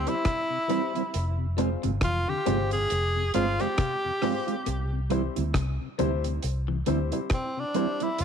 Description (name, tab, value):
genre	roots reggae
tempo	68 BPM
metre	4/4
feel	swing 58% on 16ths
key	C major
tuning	A4 = 440 Hz
part	bright tenor saxophone	melody	0.0-8.2 s	C4 to Ab4	-29 LUFS	equal	tape echo
part	dark upright piano	stabs	0.0-8.0 s	C4 to C5	-33 LUFS	left 12 dB	none
part	vintage muted fingered electric bass	bass	0.0-8.2 s	F1 to D2	-28 LUFS	equal	none
part	mellow electric guitar	accompaniment	0.1-8.1 s	G3 to F4	-32 LUFS	right 14 dB	tape echo
part	mellow tonewheel organ	accompaniment	0.1-8.1 s	F2 to C4	-38 LUFS	left 11 dB	slow rotary speaker
part	deep reggae drum kit	drums	0.1-8.2 s	hi-hat, kick drum, rim click	-31 LUFS	equal	none
part	clean electric guitar	arpeggios	1.6-7.0 s	Ab2 to E3	-37 LUFS	left 9 dB	spring reverb
room	light reverb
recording	1960s-style stereo with parts hard left and right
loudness	-25 LUFS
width	side -7 dB against mid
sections	0.0-8.2 A section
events	tenor saxophone solo 0.0-8.2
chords	0.0 C; 1.1 Fm; 4.7 C